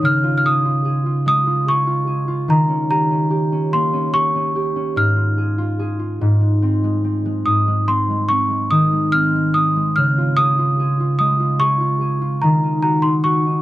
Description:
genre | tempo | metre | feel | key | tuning
children's music, lullaby | 48 BPM (dotted quarters) | 6/8 | straight | Db major | A4 = 440 Hz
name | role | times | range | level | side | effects
worn celesta | melody | 0.0-13.6 s | Bb5 to F6 | -18 LUFS | equal | none
concert harp | accompaniment | 0.0-13.6 s | Ab2 to Ab4 | -18 LUFS | equal | none
room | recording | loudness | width
little or no reverb | dry, close 1970s-style studio recording | -15 LUFS | side -15 dB against mid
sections
0.0-13.6 A section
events
none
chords
0.0 Db; 2.5 Eb7; 5.0 Fm/Ab; 6.2 Ab; 10.0 Dbadd9; 12.4 Ebm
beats
| 0.04 1.27 | 2.49 3.72 | 4.97 6.21 | 7.46 8.72 | 9.97 11.21 | 12.43

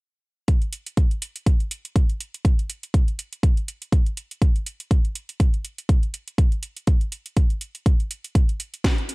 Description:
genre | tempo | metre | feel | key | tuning
nu-disco | 122 BPM | 4/4 | swing 56% on 16ths | none | none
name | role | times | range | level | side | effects
electronic kick drum | drums | 0.5-9.0 s | none | -18 LUFS | equal | none
house drum kit | drums | 0.5-9.1 s | hi-hat, snare drum | -31 LUFS | right 2 dB | none
room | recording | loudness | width
little or no reverb | dark, warm production | -20 LUFS | side -28 dB against mid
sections
0.5-9.1 A section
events
none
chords
none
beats
| 0.48 0.98 1.47 1.96 | 2.45 2.94 3.44 3.93 | 4.42 4.91 5.40 5.89 | 6.39 6.88 7.37 7.86 | 8.35 8.85

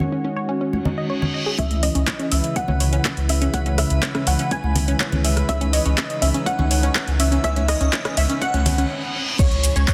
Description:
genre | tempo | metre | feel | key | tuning
progressive house | 123 BPM | 4/4 | straight | C# minor | A4 = 440 Hz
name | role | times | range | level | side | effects
unison pluck | melody | 0.0-9.9 s | C#5 to G#5 | -32 LUFS | equal | tape echo
warm analog pad | sustained chords | 0.0-9.9 s | C#3 to F#4 | -30 LUFS | equal | chorus, sidechain pumping
congas | percussion | 0.0-8.8 s | none | -29 LUFS | equal | sidechain pumping on perc
unison pluck | arpeggios | 0.1-9.9 s | C#4 to D#5 | -30 LUFS | equal | cassette tape, sidechain pumping, tape echo
reverse cymbal, riser and impact | sound effects | 0.9-9.9 s | none | -34 LUFS | equal | none
airy dreamy lead | second line | 1.6-9.9 s | C#5 to G#5 | -32 LUFS | equal | chorus, vintage 12-bit sampler grit, sidechain pumping, tape echo
round analog bass | bass | 1.6-9.8 s | C#2 | -23 LUFS | equal | sidechain pumping
deep house drum kit | drums | 1.6-9.9 s | crash cymbal, handclaps, hi-hat, rim click, shaker | -27 LUFS | equal | low-pass filter on hats, studio reverb, low-pass filter on snare, low-pass filter on cymbals, low-pass filter on perc
electronic kick drum | drums | 1.6-9.9 s | none | -26 LUFS | equal | high-pass filter on kick, studio reverb
drifting glass-harmonics texture | texture | 2.3-8.9 s | B4 to B5 | -40 LUFS | equal | chorus, built-in reverb, sidechain pumping
room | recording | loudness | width
light reverb, digital ambience | dense, heavily limited modern master | -21 LUFS | mono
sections
0.0-1.6 A section; 1.6-9.4 B section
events
reverse cymbal 0.9-1.6, 8.4-9.4; build-up 1.6-9.4; filter sweep on synth pluck 1.6-9.4; filter sweep on digital synth lead 1.6-9.4; stop 8.9-9.4; impact 9.4-9.9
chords
0.0 G#sus4; 1.6 C#m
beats
0.12 0.61 1.10 | 1.59 2.07 2.56 3.05 | 3.54 4.03 4.51 5.00 | 5.49 5.98 6.46 6.95 | 7.44 7.93 8.41 8.90 | 9.39 9.88

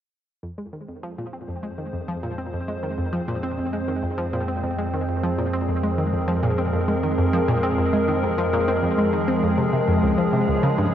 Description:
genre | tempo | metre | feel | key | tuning
ambient, sequencer-driven space music | 100 BPM | 4/4 | straight | F minor | A4 = 440 Hz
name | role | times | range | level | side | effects
evolving wavetable pad | sustained chords | 1.1-10.9 s | F3 to Db5 | -24 LUFS | equal | chorus, built-in reverb
analog pluck | riff | 0.4-10.9 s | Db2 to C4 | -25 LUFS | equal | chorus, tape echo
warm sub bass | bass | 0.4-10.9 s | Db2 to F2 | -30 LUFS | equal | transformer saturation
room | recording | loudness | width
wet huge ambient reverb, RT60 8.0 s | worn, warbling old tape, cassette tape, warbly pitch drift, nothing above 10.4 kHz | -20 LUFS | side -10 dB against mid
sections
0.4-10.9 A section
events
fade-in on synth arpeggio sound 0.4-10.9; fade-in on ambient pad 0.4-10.9; fade-in on sub bass 0.4-10.9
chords
0.4 Fm; 10.0 Db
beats
| 0.43 1.03 1.63 2.23 | 2.83 3.43 4.03 4.63 | 5.23 5.83 6.43 7.03 | 7.63 8.23 8.83 9.43 | 10.03 10.63

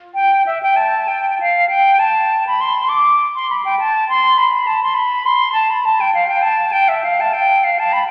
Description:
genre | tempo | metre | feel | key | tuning
classical, baroque-style fantasia for unaccompanied flute | 67 BPM (dotted quarters) | 12/8 | rubato | unclear | A4 = 440 Hz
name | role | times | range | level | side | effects
silver concert flute | solo | 0.1-8.1 s | E5 to D6 | -15 LUFS | equal | none
room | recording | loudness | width
wet church reverb, RT60 2.5 s | very old 78 rpm record, vinyl crackle, nothing above 10.5 kHz | -15 LUFS | mono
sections
0.1-8.1 A section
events
none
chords
none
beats
| 0.14 1.08 1.99 2.90 | 3.79 4.66 5.55 6.44 | 7.32

